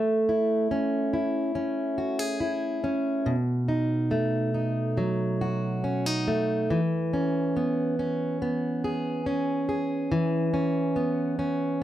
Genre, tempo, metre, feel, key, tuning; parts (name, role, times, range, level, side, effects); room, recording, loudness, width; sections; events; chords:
pop; 70 BPM; 4/4; straight; E major; A4 = 442 Hz
fingerpicked plugged-in steel-string acoustic guitar; solo; 0.0-11.8 s; B2 to G#4; -24 LUFS; equal
light reverb; dry, close 1970s-style studio recording; -24 LUFS; side -12 dB against mid
0.0-6.7 A section; 6.7-11.8 B section
0.0 Amaj7; 3.3 B7; 6.7 E6